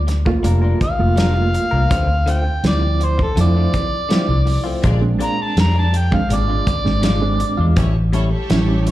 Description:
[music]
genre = straight-eighth soul blues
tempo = 82 BPM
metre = 4/4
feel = straight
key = D minor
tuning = A4 = 440 Hz
[part]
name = overdriven harmonica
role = melody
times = 0.0-7.7 s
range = A4 to Bb5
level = -23 LUFS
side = equal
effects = slapback echo
[part]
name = vintage muted fingered electric bass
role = bass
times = 0.0-8.9 s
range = F1 to F2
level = -16 LUFS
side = equal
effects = none
[part]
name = direct-recorded clean electric guitar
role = stabs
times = 0.1-8.9 s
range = A2 to Bb4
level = -28 LUFS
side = left 4 dB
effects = slapback echo
[part]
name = warm soul drum kit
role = drums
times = 0.1-8.9 s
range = hi-hat, kick drum, snare drum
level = -21 LUFS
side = equal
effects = none
[part]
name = reed electric piano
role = accompaniment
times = 0.3-8.9 s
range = F3 to F4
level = -22 LUFS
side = right 4 dB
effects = fast tremolo, slapback echo
[part]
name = clear studio string section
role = sustained chords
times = 4.8-8.9 s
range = G4 to D5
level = -30 LUFS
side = left 1 dB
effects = none
[sound]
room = small room ambience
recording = live gig heard through the venue's PA, club reverb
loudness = -14 LUFS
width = side -15 dB against mid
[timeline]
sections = 0.0-8.9 A section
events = harmonica solo 0.0-8.9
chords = 0.0 Gm7; 1.9 Dm7; 4.8 Bb7; 7.8 A7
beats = 0.44 1.17 | 1.91 2.64 3.37 4.11 | 4.84 5.57 6.30 7.04 | 7.77 8.50

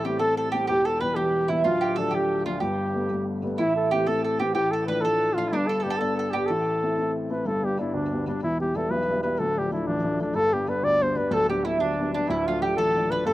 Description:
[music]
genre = celtic folk, Celtic jig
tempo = 124 BPM (dotted quarters)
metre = 6/8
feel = straight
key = unclear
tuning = A4 = 440 Hz
[part]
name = mellow flugelhorn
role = melody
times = 0.0-13.3 s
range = D4 to D5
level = -25 LUFS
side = equal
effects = slapback echo
[part]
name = mandolin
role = second line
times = 0.0-7.1, 11.3-13.3 s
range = D4 to B4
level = -28 LUFS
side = right 5 dB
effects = slapback echo
[part]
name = dark baby grand piano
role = accompaniment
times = 0.0-13.3 s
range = D1 to E4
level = -28 LUFS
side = left 1 dB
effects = slapback echo
[sound]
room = little or no reverb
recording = recorded outdoors, with no room sound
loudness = -22 LUFS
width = side -15 dB against mid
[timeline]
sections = 0.0-7.5 A section; 7.5-13.3 B section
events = none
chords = 0.0 Am7; 0.7 Em; 1.6 Dm; 2.6 Gadd9; 3.6 Am; 4.6 Dm/A; 5.5 G; 6.5 Am; 7.5 G; 8.4 Em; 9.4 Dm; 10.4 G; 12.3 Dm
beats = 0.19 | 0.68 1.16 | 1.65 2.13 | 2.62 3.10 | 3.58 4.07 | 4.55 5.04 | 5.52 6.00 | 6.49 6.97 | 7.46 7.94 | 8.42 8.91 | 9.39 9.87 | 10.36 10.84 | 11.32 11.81 | 12.29 12.78 | 13.26

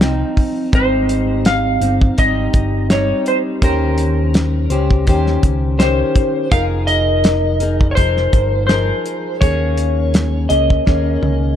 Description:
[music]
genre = indie pop, bedroom pop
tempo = 83 BPM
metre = 4/4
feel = swing 55% on 16ths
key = unclear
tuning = A4 = 440 Hz
[part]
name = fingerpicked plugged-in steel-string acoustic guitar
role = accompaniment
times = 0.0-11.6 s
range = Ab2 to C5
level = -20 LUFS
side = left 2 dB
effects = wide subtle chorus, vibrato effect
[part]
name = picked electric bass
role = bass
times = 0.0-11.6 s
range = F1 to Eb2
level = -18 LUFS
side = equal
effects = none
[part]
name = cloth-damped thuddy drum kit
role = drums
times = 0.0-11.4 s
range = hi-hat, kick drum, snare drum, toms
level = -16 LUFS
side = equal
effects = none
[part]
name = clean lap steel guitar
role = melody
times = 0.8-11.5 s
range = Bb4 to F5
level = -19 LUFS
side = equal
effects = wide subtle chorus, analog delay
[sound]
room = little or no reverb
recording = dark, warm production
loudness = -13 LUFS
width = side -10 dB against mid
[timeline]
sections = 0.0-11.6 A section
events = drum fill 10.9-11.6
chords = 0.0 Dbmaj9 (rootless); 0.7 Abmaj7; 3.6 Eb6; 6.5 Fm11; 9.4 Eb7sus4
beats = 0.01 | 0.73 1.45 2.18 2.90 | 3.62 4.35 5.07 5.80 | 6.52 7.25 7.97 8.69 | 9.42 10.14 10.87

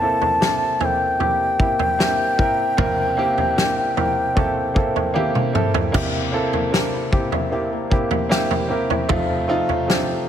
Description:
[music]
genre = pop ballad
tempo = 76 BPM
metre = 4/4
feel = straight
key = unclear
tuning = A4 = 438 Hz
[part]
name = bansuri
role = melody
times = 0.0-5.2 s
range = G5 to A5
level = -20 LUFS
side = left 1 dB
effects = none
[part]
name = warm baby grand piano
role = accompaniment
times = 0.0-10.3 s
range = F1 to Bb4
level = -22 LUFS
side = right 2 dB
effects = none
[part]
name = flamenco guitar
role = arpeggios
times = 0.0-10.3 s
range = C3 to A4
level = -29 LUFS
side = left 7 dB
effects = none
[part]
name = natural country drum kit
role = drums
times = 0.2-10.1 s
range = crash cymbal, kick drum, snare drum, toms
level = -22 LUFS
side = equal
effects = none
[sound]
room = light reverb, small room reverb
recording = none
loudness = -17 LUFS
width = side -9 dB against mid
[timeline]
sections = 0.0-5.9 A section; 5.9-10.3 B section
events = drum fill 5.2-5.9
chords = 0.0 C7; 9.1 F7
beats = 0.42 1.21 2.00 | 2.79 3.58 4.37 5.16 | 5.95 6.73 7.52 8.31 | 9.10 9.89

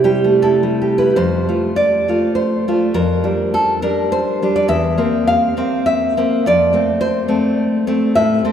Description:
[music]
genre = romantic piece for solo classical guitar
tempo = 103 BPM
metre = 3/4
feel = uneven beats, rubato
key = F major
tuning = A4 = 440 Hz
[part]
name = nylon-string guitar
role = solo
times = 0.0-8.5 s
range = E2 to F5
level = -14 LUFS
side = equal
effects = none
[sound]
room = wet cathedral reverb, RT60 4.3 s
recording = recorded in a church or concert hall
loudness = -14 LUFS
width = side -8 dB against mid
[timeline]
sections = 0.0-1.2 A section; 1.2-8.5 B section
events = none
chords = 0.0 C; 1.2 F; 3.0 Gm7/F; 4.7 C7/E; 6.5 F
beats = 0.42 | 1.16 1.77 2.37 | 2.96 3.55 4.14 | 4.72 5.31 5.89 | 6.47 7.03 7.59 | 8.18

